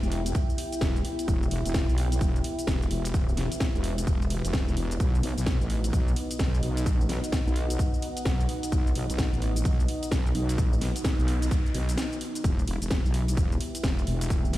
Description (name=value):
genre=bass house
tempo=129 BPM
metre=4/4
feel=swing 62% on 16ths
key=E harmonic minor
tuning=A4 = 441 Hz
part: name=dark analog pad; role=sustained chords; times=0.0-14.6 s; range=B3 to E5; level=-37 LUFS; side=left 2 dB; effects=chorus, sidechain pumping
part: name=wobble bass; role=bass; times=0.0-14.6 s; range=E1 to B1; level=-27 LUFS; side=equal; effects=chorus, tube saturation, sidechain pumping
part: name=house drum kit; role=drums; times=0.0-14.6 s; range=hi-hat, shaker, snare drum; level=-35 LUFS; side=left 1 dB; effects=overdrive
part: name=deep dark ambient pad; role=texture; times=0.0-14.6 s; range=D#4 to G5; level=-38 LUFS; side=right 1 dB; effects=chorus, built-in reverb, sidechain pumping
part: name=electronic kick drum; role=drums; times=0.3-14.4 s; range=none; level=-26 LUFS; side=equal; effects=overdrive
part: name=noise sweep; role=sound effects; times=10.8-12.4 s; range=none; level=-44 LUFS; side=equal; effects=none
room=digital ambience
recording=played on a big sound system in a bare room, stone room reverb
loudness=-24 LUFS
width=side -16 dB against mid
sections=0.0-14.6 A section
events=noise sweep 10.8-12.4; break 12.0-12.4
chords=0.0 Em; 5.0 B; 12.4 Em